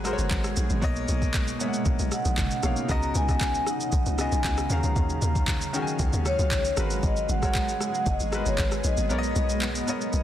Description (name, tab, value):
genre	amapiano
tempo	116 BPM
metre	4/4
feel	straight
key	unclear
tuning	A4 = 440 Hz
part	bright baby grand piano	accompaniment	0.0-10.2 s	B2 to Ab5	-32 LUFS	left 2 dB	none
part	granular cloud pad	sustained chords	0.0-10.2 s	Cb3 to F5	-32 LUFS	right 1 dB	built-in reverb, sidechain pumping
part	hollow log drum bass	bass	0.0-10.2 s	Gb1 to Eb2	-27 LUFS	equal	none
part	smooth R&B drum kit	drums	0.1-10.2 s	handclaps, kick drum, rim click, shaker	-28 LUFS	equal	overdrive
part	vibraphone with soft mallets	melody	2.1-10.2 s	Db5 to Bb5	-30 LUFS	left 1 dB	tape echo
room	little or no reverb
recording	dense, heavily limited modern master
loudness	-23 LUFS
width	side -11 dB against mid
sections	0.0-10.2 A section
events	kick muted 9.1-10.2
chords	0.0 Abm9; 0.8 Bmaj9; 2.9 Db9sus4; 4.7 Ebm11; 6.8 Abm9; 9.1 Bmaj9